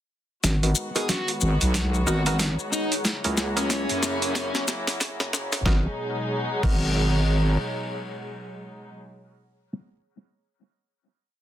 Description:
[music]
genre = glitch hop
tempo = 92 BPM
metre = 4/4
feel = swing 59% on 16ths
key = G# minor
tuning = A4 = 440 Hz
[part]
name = dark chamber string section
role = sustained chords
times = 0.4-8.9 s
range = B2 to F#4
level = -32 LUFS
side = left 1 dB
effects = vintage 12-bit sampler grit, sidechain pumping
[part]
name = wobble bass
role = bass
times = 0.4-7.6 s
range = G#1 to F#2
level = -23 LUFS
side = equal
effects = chorus, overdrive
[part]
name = boom bap sampler-style drum kit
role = drums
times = 0.4-6.9 s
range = crash cymbal, hi-hat, snare drum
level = -28 LUFS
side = equal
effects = overdrive
[part]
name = electronic kick drum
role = drums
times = 0.4-6.9 s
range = none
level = -25 LUFS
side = equal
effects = overdrive, high-pass filter on kick
[part]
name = maracas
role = percussion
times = 0.4-5.6 s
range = none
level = -30 LUFS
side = left 5 dB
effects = none
[part]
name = warbly tape-like pad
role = texture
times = 1.3-9.0 s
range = G#4 to A#5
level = -34 LUFS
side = equal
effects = chorus, built-in reverb, sidechain pumping
[part]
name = muted clav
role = stabs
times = 0.6-9.7 s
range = B3 to A#4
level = -33 LUFS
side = right 1 dB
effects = overdrive, sidechain pumping, low-pass filter, dub echo
[part]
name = bluesy overdriven lead guitar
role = melody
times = 1.0-4.6 s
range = C#4 to G#4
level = -31 LUFS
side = left 2 dB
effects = distortion, vintage 12-bit sampler grit, dub echo
[part]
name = rubbery square bass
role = bass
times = 5.2-5.6 s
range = F#1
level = -33 LUFS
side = equal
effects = none
[sound]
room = light reverb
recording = dense, heavily limited modern master, high-pass filter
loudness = -22 LUFS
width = side -12 dB against mid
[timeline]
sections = 0.4-5.7 build; 5.7-8.3 final chord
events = build-up 0.4-5.7; drum fill 0.4-5.7; filter sweep on clav 0.4-5.7; filter sweep 0.4-5.7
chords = 0.4 G#m7; 3.0 F#7; 5.7 G#m7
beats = | 0.44 1.09 1.75 2.40 | 3.05 3.70 4.35 5.01 | 5.66 6.31 6.96 7.61

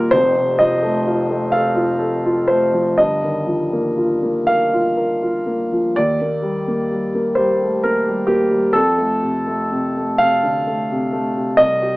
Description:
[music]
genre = neoclassical minimalist piano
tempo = 40-44 BPM (dotted quarters)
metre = 6/8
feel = rubato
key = unclear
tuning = A4 = 437 Hz
[part]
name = dark concert grand piano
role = solo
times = 0.0-12.0 s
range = F1 to F5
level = -15 LUFS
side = equal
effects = none
[sound]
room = light reverb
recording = AM radio sound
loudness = -15 LUFS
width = side -20 dB against mid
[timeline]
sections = 0.0-6.0 A section; 6.0-12.0 B section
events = none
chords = 0.1 F; 3.0 Ebadd9/G; 6.0 Eb; 8.7 F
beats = | 0.12 1.52 | 2.97 4.46 | 5.96 7.36 | 8.74 10.21 | 11.59

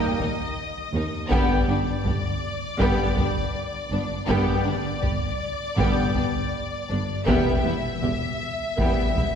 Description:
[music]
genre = cinematic, epic orchestral film score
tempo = 80 BPM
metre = 4/4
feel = straight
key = unclear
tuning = A4 = 440 Hz
[part]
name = warm symphonic violin section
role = melody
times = 0.0-9.4 s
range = D5 to E5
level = -30 LUFS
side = left 2 dB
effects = none
[part]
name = warm symphonic violin section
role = second line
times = 0.0-9.3 s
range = Bb3 to G4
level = -31 LUFS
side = left 2 dB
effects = none
[part]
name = dark symphonic viola section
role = accompaniment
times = 0.0-9.2 s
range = Bb3 to B3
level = -31 LUFS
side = equal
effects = none
[part]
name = clear French horn section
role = sustained chords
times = 0.0-9.1 s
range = Bb3 to G4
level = -33 LUFS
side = left 2 dB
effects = none
[part]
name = dark trombone section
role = sustained chords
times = 0.0-9.1 s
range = D3 to G3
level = -34 LUFS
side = right 2 dB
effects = none
[part]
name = dark trumpet section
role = stabs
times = 0.0-9.1 s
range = G5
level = -34 LUFS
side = right 1 dB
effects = none
[part]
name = rich symphonic double bass section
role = bass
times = 0.2-9.2 s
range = E1 to Eb2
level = -30 LUFS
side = right 1 dB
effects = none
[part]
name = warm symphonic cello section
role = bass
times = 0.2-9.3 s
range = Eb2 to G2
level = -30 LUFS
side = right 1 dB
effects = none
[part]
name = taiko ensemble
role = drums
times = 0.2-9.4 s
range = none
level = -28 LUFS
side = equal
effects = none
[sound]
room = wet scoring stage reverb, RT60 1.7 s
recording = heard from further back in the room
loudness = -22 LUFS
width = side -8 dB against mid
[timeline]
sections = 0.0-9.4 A section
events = none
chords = 0.0 Eb; 1.3 G; 7.3 Em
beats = 0.57 | 1.31 2.06 2.80 3.55 | 4.29 5.04 5.78 6.53 | 7.28 8.03 8.79

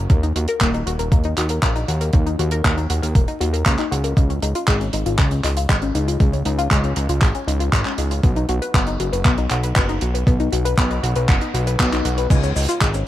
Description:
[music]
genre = italo disco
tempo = 118 BPM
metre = 4/4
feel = straight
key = unclear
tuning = A4 = 440 Hz
[part]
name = analog pluck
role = arpeggios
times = 0.0-13.1 s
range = G#3 to B4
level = -24 LUFS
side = left 3 dB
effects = chorus, phaser, tape echo
[part]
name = fat analog bass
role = bass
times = 0.0-13.0 s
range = D#1 to D#2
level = -21 LUFS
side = equal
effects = none
[part]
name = damped 70s drum kit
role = drums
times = 0.1-13.0 s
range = cabasa, crash cymbal, handclaps, hi-hat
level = -24 LUFS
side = right 1 dB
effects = none
[part]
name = electronic kick drum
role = drums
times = 0.1-12.9 s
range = none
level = -17 LUFS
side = equal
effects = none
[sound]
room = light reverb, studio reverb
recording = vinyl crackle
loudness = -16 LUFS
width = side -13 dB against mid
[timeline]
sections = 0.0-4.2 A section; 4.2-12.3 B section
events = none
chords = 0.1 D#m; 4.2 C#add9; 8.2 B; 12.3 C#5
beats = | 0.10 0.61 1.12 1.63 | 2.13 2.64 3.15 3.66 | 4.17 4.68 5.19 5.69 | 6.20 6.71 7.22 7.73 | 8.24 8.74 9.25 9.76 | 10.27 10.78 11.29 11.80 | 12.30 12.81

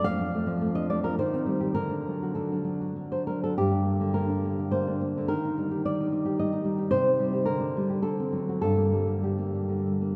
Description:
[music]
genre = romantic piece for solo classical guitar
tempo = 96-112 BPM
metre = 3/4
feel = rubato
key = G minor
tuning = A4 = 438 Hz
[part]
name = nylon-string guitar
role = solo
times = 0.0-10.2 s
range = F2 to F5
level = -28 LUFS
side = equal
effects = none
[sound]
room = wet cathedral reverb, RT60 4.9 s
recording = in a vast, echoing space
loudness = -28 LUFS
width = mono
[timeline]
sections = 0.0-10.2 A section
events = none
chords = 0.1 Dm/F; 1.2 Cm/Eb; 1.7 D; 3.6 Gm; 5.3 Eb; 6.9 Cm; 7.5 Gm/D; 8.0 D7; 8.6 Gm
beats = | 0.06 0.61 1.16 | 1.75 2.36 2.97 | 3.57 4.15 4.72 | 5.28 5.84 6.38 | 6.92 7.47 8.03 | 8.62 9.24 9.85

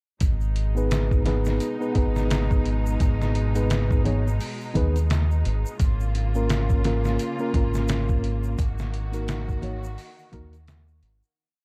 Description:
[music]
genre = trip hop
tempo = 86 BPM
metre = 4/4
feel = swing 58% on 16ths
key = G# dorian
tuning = A4 = 440 Hz
[part]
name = clear studio string section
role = sustained chords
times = 0.2-11.3 s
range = B2 to F#4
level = -38 LUFS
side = equal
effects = none
[part]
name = deep dub fingered electric bass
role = bass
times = 0.2-11.2 s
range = G#1 to D#2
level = -27 LUFS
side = equal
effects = none
[part]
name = trip hop sampler-style drum kit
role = drums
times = 0.2-11.2 s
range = hi-hat, kick drum, snare drum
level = -28 LUFS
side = equal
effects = none
[part]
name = egg shaker and congas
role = percussion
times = 0.2-11.3 s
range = none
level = -38 LUFS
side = equal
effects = none
[part]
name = mellow tine electric piano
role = accompaniment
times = 0.8-10.5 s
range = A#3 to C#5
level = -31 LUFS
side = equal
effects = tremolo, tape echo
[sound]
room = little or no reverb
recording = dark, warm production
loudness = -24 LUFS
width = mono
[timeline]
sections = 0.2-11.4 groove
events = fade-out 7.7-11.4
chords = 0.2 G#m; 5.8 A#m/G#; 8.6 D#m/G#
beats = | 0.21 0.91 1.61 2.30 | 3.00 3.70 4.40 5.09 | 5.79 6.49 7.19 7.88 | 8.58 9.28 9.98 10.68

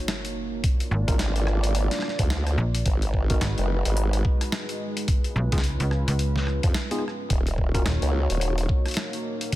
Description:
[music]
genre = glitch hop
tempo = 108 BPM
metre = 4/4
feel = swing 60% on 16ths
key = Eb minor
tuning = A4 = 436 Hz
[part]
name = dark analog pad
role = sustained chords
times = 0.0-9.6 s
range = Ab3 to D5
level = -32 LUFS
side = equal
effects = chorus, sidechain pumping
[part]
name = sub drop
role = sound effects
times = 0.0-0.6 s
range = none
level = -39 LUFS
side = equal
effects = none
[part]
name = boom bap sampler-style drum kit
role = drums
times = 0.1-9.6 s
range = hi-hat, rim click, snare drum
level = -31 LUFS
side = left 1 dB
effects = small room reverb
[part]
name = electronic kick drum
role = drums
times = 0.6-9.6 s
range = none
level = -24 LUFS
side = equal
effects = small room reverb
[part]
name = slap-like FM bass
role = bass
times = 0.9-8.0 s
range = Eb1 to Db2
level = -23 LUFS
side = equal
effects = none
[part]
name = tine electric piano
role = stabs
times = 1.1-7.8 s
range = Bb3 to Bb4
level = -34 LUFS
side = left 1 dB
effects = vintage 12-bit sampler grit, sidechain pumping, ping-pong delay
[part]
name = formant-sweep wobble bass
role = bass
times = 1.1-8.7 s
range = Eb1 to F2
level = -24 LUFS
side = equal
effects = chorus, overdrive
[sound]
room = little or no reverb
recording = dense, heavily limited modern master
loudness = -22 LUFS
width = side -16 dB against mid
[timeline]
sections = 0.0-9.6 A section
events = impact 0.0-0.6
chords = 0.0 Ebm7; 0.6 Bb; 2.9 Abm7; 5.1 Db7; 7.3 Ebm7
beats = 0.08 | 0.64 1.19 1.75 2.30 | 2.86 3.41 3.97 4.53 | 5.08 5.64 6.19 6.75 | 7.30 7.86 8.41 8.97 | 9.53

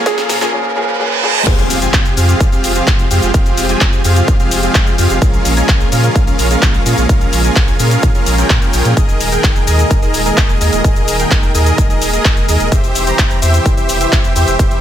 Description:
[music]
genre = EDM, festival progressive house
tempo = 128 BPM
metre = 4/4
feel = straight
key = F minor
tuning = A4 = 442 Hz
[part]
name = lush unison pad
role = sustained chords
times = 0.0-14.8 s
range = Bb2 to Ab4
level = -21 LUFS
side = right 1 dB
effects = chorus, sidechain pumping
[part]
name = dense compressed supersaw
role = riff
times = 0.0-14.8 s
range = C4 to Bb5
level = -17 LUFS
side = equal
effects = sidechain pumping, ping-pong delay
[part]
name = riser, reverse cymbal and impact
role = sound effects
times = 0.0-3.3 s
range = none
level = -18 LUFS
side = right 4 dB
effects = none
[part]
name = mallet-like synth pluck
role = melody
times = 0.1-0.5 s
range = Ab4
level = -22 LUFS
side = right 4 dB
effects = none
[part]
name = warm grand piano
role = accompaniment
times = 0.1-1.5 s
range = Bb2 to Ab4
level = -19 LUFS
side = left 2 dB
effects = sidechain pumping, ping-pong delay
[part]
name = saturated sub bass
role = bass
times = 0.1-14.8 s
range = Eb1 to Bb2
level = -16 LUFS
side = equal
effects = sidechain pumping
[part]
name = big-room dance drum kit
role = drums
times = 0.1-14.8 s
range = cabasa, crash cymbal, handclaps, hi-hat, snare drum, toms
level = -18 LUFS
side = left 2 dB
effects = high-pass filter on snare, small room ambience, high-pass filter on hats, high-pass filter on perc, high-pass filter on toms, high-pass filter on cymbals
[part]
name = electronic kick drum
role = drums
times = 0.1-14.7 s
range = none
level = -13 LUFS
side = equal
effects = high-pass filter on kick, small room ambience
[sound]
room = digital ambience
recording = high-pass filter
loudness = -10 LUFS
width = side -10 dB against mid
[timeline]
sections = 0.0-1.5 A section; 1.5-14.8 B section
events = build-up 0.0-1.5; drum fill 0.0-0.5, 1.2; riser 0.0-1.5; filter sweep 0.0-1.5; reverse cymbal 0.5-1.5; drop 1.5-14.8; impact 1.5-3.3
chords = 0.0 Bbm7; 1.5 Fmadd9; 5.2 Bbm7; 9.0 Ebsus4; 12.7 C/E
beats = 0.06 0.53 1.00 | 1.47 1.94 2.41 2.87 | 3.34 3.81 4.28 4.75 | 5.22 5.69 6.16 6.62 | 7.09 7.56 8.03 8.50 | 8.97 9.44 9.91 10.37 | 10.84 11.31 11.78 12.25 | 12.72 13.19 13.66 14.12 | 14.59

